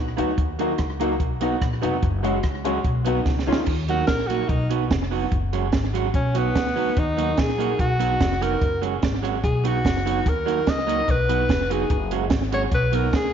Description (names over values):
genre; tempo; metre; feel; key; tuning
ska; 146 BPM; 4/4; straight; unclear; A4 = 440 Hz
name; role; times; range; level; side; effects
upright bass; bass; 0.0-13.3 s; F1 to Eb2; -26 LUFS; left 1 dB; none
vintage hollow-body jazz guitar; accompaniment; 0.2-13.1 s; Eb3 to F#4; -27 LUFS; right 9 dB; slapback echo
clear upright piano; stabs; 0.2-3.6 s; Ab3 to F#4; -26 LUFS; left 10 dB; none
compact cocktail drum kit; drums; 0.2-13.2 s; crash cymbal, hi-hat, kick drum, rim click, snare drum; -24 LUFS; right 1 dB; slapback echo
bright alto saxophone; melody; 3.9-13.3 s; B3 to Eb5; -25 LUFS; left 1 dB; none
room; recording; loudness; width
moderate echo chamber reverb, RT60 1.8 s; 1960s-style stereo with parts hard left and right, nothing above 7.5 kHz; -20 LUFS; side -8 dB against mid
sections
0.0-3.7 A section; 3.7-13.3 B section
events
drum fill 3.3-3.7; alto saxophone solo 3.7-13.3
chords
0.4 Ebm; 1.2 B; 2.0 Gbsus2; 2.9 B; 3.3 Dbadd9; 3.7 Ebm; 4.5 B; 5.3 Gbsus2; 6.1 B; 7.0 Ebm; 7.8 B; 8.6 Gbsus2; 9.4 B; 10.3 Ebm; 11.1 B; 11.9 Gbsus2; 12.7 B